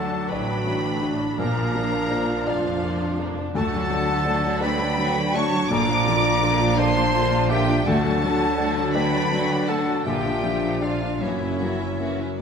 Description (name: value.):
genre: cinematic.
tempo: 55 BPM (dotted quarters).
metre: 6/8.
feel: rubato.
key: unclear.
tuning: A4 = 442 Hz.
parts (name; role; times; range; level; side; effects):
warm symphonic violin section; melody; 0.0-12.4 s; E5 to D6; -28 LUFS; left 2 dB; none.
hollow concert flute; second line; 0.0-12.4 s; C#5 to Bb5; -30 LUFS; equal; none.
rich studio violin section; second line; 0.0-12.4 s; A3 to F#4; -32 LUFS; left 2 dB; none.
warm clarinet; second line; 0.0-12.2 s; E4 to D5; -29 LUFS; left 1 dB; none.
felt-muted upright piano; accompaniment; 0.0-12.4 s; Bb1 to D5; -30 LUFS; left 3 dB; none.
warm symphonic viola section; accompaniment; 0.0-12.4 s; D3 to D4; -30 LUFS; equal; none.
mellow French horn section; sustained chords; 0.0-12.1 s; F3 to D4; -30 LUFS; right 1 dB; none.
concert harp; arpeggios; 0.0-12.4 s; F#2 to D6; -32 LUFS; left 7 dB; none.
rich symphonic double bass section; bass; 0.0-12.2 s; F1 to D2; -31 LUFS; right 6 dB; none.
warm symphonic cello section; bass; 0.0-12.4 s; F2 to D3; -29 LUFS; right 3 dB; none.
room: moderate scoring stage reverb, RT60 1.6 s.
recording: minimal, uncompressed stereo recording.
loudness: -20 LUFS.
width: side -6 dB against mid.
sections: 0.0-12.4 A section.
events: none.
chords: 0.0 D; 1.4 Bb; 3.6 D; 5.7 Bb; 7.9 D; 10.1 Bb; 11.2 F#7.